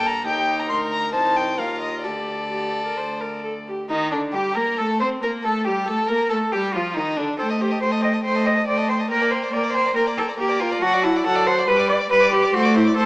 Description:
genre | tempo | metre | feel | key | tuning
quick classical-period movement for string quartet | 139 BPM | 4/4 | rubato | G minor | A4 = 440 Hz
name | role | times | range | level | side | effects
dark violin | melody | 0.0-13.1 s | D4 to D6 | -27 LUFS | left 2 dB | none
warm violin | second line | 0.0-13.1 s | D4 to F#5 | -26 LUFS | left 1 dB | none
warm viola | accompaniment | 0.0-13.1 s | D3 to C5 | -25 LUFS | equal | none
rich cello | bass | 0.0-13.1 s | C2 to Eb5 | -22 LUFS | equal | none
room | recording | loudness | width
moderate recital hall reverb, RT60 1.4 s | small speaker sound | -18 LUFS | side -24 dB against mid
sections
0.0-3.9 A section; 3.9-13.1 B section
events
none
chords
0.3 Eb; 1.1 Cm; 2.0 Dsus4; 3.0 D5; 3.9 Gm; 5.7 Eb/G; 7.4 Am7b5; 9.1 Gm/Bb; 10.8 D/F#; 11.7 G; 12.5 D7/A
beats
| 0.26 0.70 1.13 1.58 | 2.04 2.51 2.97 3.44 | 3.90 4.34 4.78 5.22 | 5.65 6.08 6.52 6.96 | 7.39 7.82 8.25 8.67 | 9.10 9.52 9.96 10.39 | 10.81 11.24 11.68 12.10 | 12.53 12.96

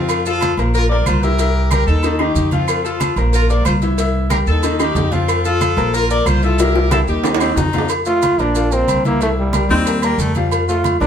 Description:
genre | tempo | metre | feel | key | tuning
latin, salsa | 184 BPM | 4/4 | straight | F major | A4 = 440 Hz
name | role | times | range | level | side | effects
clear horn section | melody | 0.0-7.5 s | C4 to D5 | -20 LUFS | left 2 dB | none
bright upright piano | accompaniment | 0.0-11.1 s | Eb3 to F5 | -22 LUFS | left 4 dB | none
upright bass | bass | 0.0-11.1 s | Bb1 to F2 | -18 LUFS | right 1 dB | none
agogo bells and timbales | percussion | 0.1-11.1 s | none | -23 LUFS | right 4 dB | none
claves | percussion | 0.1-7.6 s | none | -32 LUFS | left 6 dB | none
congas | percussion | 0.1-11.1 s | none | -24 LUFS | right 1 dB | none
cowbell and bongos | percussion | 0.1-11.1 s | none | -26 LUFS | left 4 dB | none
maracas | percussion | 0.1-11.1 s | none | -31 LUFS | right 6 dB | none
edgy baritone saxophone | second line | 7.4-10.5 s | G3 to Eb4 | -21 LUFS | left 3 dB | none
bright trombone | melody | 8.1-11.1 s | G3 to F4 | -18 LUFS | right 1 dB | tape echo
room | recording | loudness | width
wet studio reverb, RT60 0.8 s | band playing live in one room | -14 LUFS | side -8 dB against mid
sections
0.0-7.9 A section; 7.9-11.1 B section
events
drum fill 6.6-7.9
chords
0.1 F; 0.7 Bbsus2; 1.4 C7; 2.0 Eb; 2.7 F; 3.3 Bbsus2; 4.0 C7; 4.6 Eb; 5.3 F; 5.9 Bbsus2; 6.6 C7; 7.2 Eb; 7.9 F; 8.6 Bbsus2; 9.2 C7; 9.9 Eb; 10.5 F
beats
| 0.09 0.41 0.74 1.06 | 1.39 1.71 2.04 2.36 | 2.69 3.01 3.33 3.66 | 3.98 4.31 4.63 4.96 | 5.29 5.61 5.94 6.26 | 6.59 6.92 7.24 7.57 | 7.90 8.22 8.55 8.88 | 9.21 9.53 9.86 10.19 | 10.52 10.84

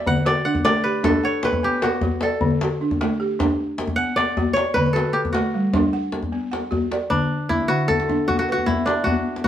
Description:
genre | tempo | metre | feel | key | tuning
west african traditional, West African string and xylophone music | 102 BPM (dotted quarters) | 12/8 | straight | D major | A4 = 442 Hz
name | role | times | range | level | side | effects
kora | melody | 0.0-9.5 s | D4 to F#5 | -22 LUFS | left 1 dB | none
balafon | arpeggios | 0.0-9.5 s | D3 to F#5 | -23 LUFS | right 1 dB | none
djembe | percussion | 0.1-9.5 s | none | -24 LUFS | left 2 dB | none
room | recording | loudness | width
moderate studio reverb, RT60 0.7 s | band playing live in one room | -19 LUFS | side -10 dB against mid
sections
0.0-7.1 A section; 7.1-9.5 B section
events
kora solo 0.0-7.1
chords
0.1 D; 1.2 Bm; 2.4 D; 3.6 Bm; 4.7 D; 5.9 Bm; 7.1 D5; 8.3 Bm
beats
| 0.06 0.65 1.23 1.82 | 2.40 2.99 3.58 4.16 | 4.75 5.34 5.92 6.51 | 7.10 7.69 8.27 8.86 | 9.45

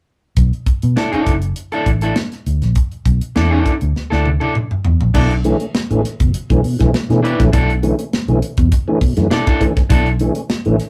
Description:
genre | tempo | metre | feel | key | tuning
funk | 101 BPM | 4/4 | straight | B minor | A4 = 440 Hz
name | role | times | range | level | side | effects
vintage muted fingered electric bass | bass | 0.4-10.8 s | F#1 to B2 | -19 LUFS | equal | none
tight funk drum kit | drums | 0.4-10.9 s | crash cymbal, hi-hat, kick drum, snare drum, toms | -20 LUFS | equal | none
electric guitar at the edge of break-up | accompaniment | 1.0-10.1 s | D4 to B4 | -21 LUFS | equal | none
tonewheel organ | stabs | 5.2-10.8 s | B2 to C#4 | -21 LUFS | equal | overdrive, chorus vibrato, slow rotary speaker
room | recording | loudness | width
moderate small room reverb, RT60 0.6 s | rough rehearsal-room recording, tube saturation | -16 LUFS | mono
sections
0.4-5.2 A section; 5.2-10.9 B section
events
drum fill 4.0-5.2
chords
0.4 Bm7 (rootless); 5.2 Bm11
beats
| 0.37 0.97 1.57 2.17 | 2.76 3.36 3.96 4.55 | 5.15 5.75 6.34 6.93 | 7.53 8.12 8.72 9.31 | 9.90 10.49

